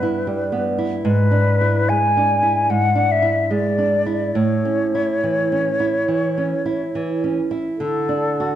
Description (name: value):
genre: romantic duo for flute and classical guitar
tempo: 62-81 BPM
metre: 4/4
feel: rubato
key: unclear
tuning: A4 = 439 Hz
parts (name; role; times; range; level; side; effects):
- silver concert flute; melody; 0.0-8.6 s; A4 to G#5; -20 LUFS; left 2 dB; none
- nylon-string guitar; accompaniment; 0.0-8.6 s; G2 to F#4; -19 LUFS; right 2 dB; none
room: wet recital hall reverb, RT60 1.3 s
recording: dark, warm production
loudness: -17 LUFS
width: side -11 dB against mid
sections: 0.0-8.6 A section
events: none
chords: 0.0 Em/G; 1.0 E7/G#; 4.3 A; 7.8 D